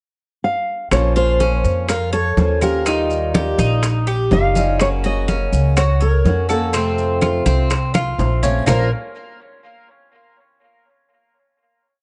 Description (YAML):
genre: latin, Cuban son and guajira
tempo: 124 BPM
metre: 4/4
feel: straight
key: Bb harmonic minor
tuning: A4 = 440 Hz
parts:
  - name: nylon-string guitar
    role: melody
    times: 0.4-8.9 s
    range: G4 to F5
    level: -23 LUFS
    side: equal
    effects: none
  - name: picked old ladder-braced acoustic guitar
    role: accompaniment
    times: 0.9-8.9 s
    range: Bb2 to C5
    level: -26 LUFS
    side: equal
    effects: none
  - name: upright bass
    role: bass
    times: 0.9-8.9 s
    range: Gb1 to F2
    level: -21 LUFS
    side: equal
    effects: none
  - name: bongos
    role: percussion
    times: 0.9-8.8 s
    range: none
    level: -30 LUFS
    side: equal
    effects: none
  - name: claves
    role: percussion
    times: 0.9-8.8 s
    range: none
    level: -33 LUFS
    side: equal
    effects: none
  - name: congas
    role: percussion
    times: 0.9-8.8 s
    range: none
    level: -24 LUFS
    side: equal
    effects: none
  - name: maracas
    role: percussion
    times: 0.9-8.8 s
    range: none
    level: -36 LUFS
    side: equal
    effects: none
  - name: Cuban tres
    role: arpeggios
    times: 1.2-8.9 s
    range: Bb3 to Db5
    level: -26 LUFS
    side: equal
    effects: analog delay
room: light reverb, small room ambience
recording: nothing above 10.3 kHz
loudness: -18 LUFS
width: mono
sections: 0.0-0.9 pickup bar; 0.9-8.7 verse; 8.7-10.6 final chord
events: drum fill 7.9-8.7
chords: 0.0 N.C.; 0.9 Bbmadd9; 2.9 Ebadd9; 4.8 Gb; 6.7 F; 8.7 Bb5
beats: 0.43 | 0.92 1.41 1.89 2.38 | 2.86 3.35 3.83 4.32 | 4.80 5.29 5.77 6.25 | 6.74 7.22 7.71 8.19 | 8.67